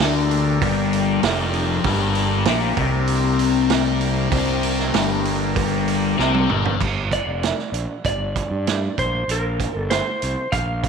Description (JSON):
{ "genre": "psychedelic rock", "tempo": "97 BPM", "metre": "4/4", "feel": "straight", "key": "G minor", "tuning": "A4 = 440 Hz", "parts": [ { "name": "combo organ", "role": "sustained chords", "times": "0.0-6.8 s", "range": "G3 to Bb4", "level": "-27 LUFS", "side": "right 9 dB", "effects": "none" }, { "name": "fuzz guitar", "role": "riff", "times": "0.0-6.8 s", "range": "F2 to D4", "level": "-21 LUFS", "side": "left 11 dB", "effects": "distortion, phaser" }, { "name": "fuzz fingered electric bass", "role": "bass", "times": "0.0-10.9 s", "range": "F1 to G2", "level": "-24 LUFS", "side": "right 1 dB", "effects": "overdrive" }, { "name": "vintage drum kit", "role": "drums", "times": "0.0-10.9 s", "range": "crash cymbal, hi-hat, kick drum, snare drum, toms", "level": "-25 LUFS", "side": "right 8 dB", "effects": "none" }, { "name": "clean lap steel guitar", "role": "melody", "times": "7.1-10.9 s", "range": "Bb4 to F5", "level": "-25 LUFS", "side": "equal", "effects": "slapback echo" } ], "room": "light reverb, studio ambience", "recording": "1960s-style stereo with parts hard left and right", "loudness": "-18 LUFS", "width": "side -6 dB against mid", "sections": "0.0-6.8 A section; 6.8-10.9 B section", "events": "drum fill 6.2-6.8", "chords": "0.0 Gm; 6.8 G5; 9.0 Bbsus2", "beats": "0.61 1.23 | 1.85 2.47 3.09 3.71 | 4.32 4.94 5.56 6.18 | 6.80 7.42 8.04 8.66 | 9.28 9.91 10.53" }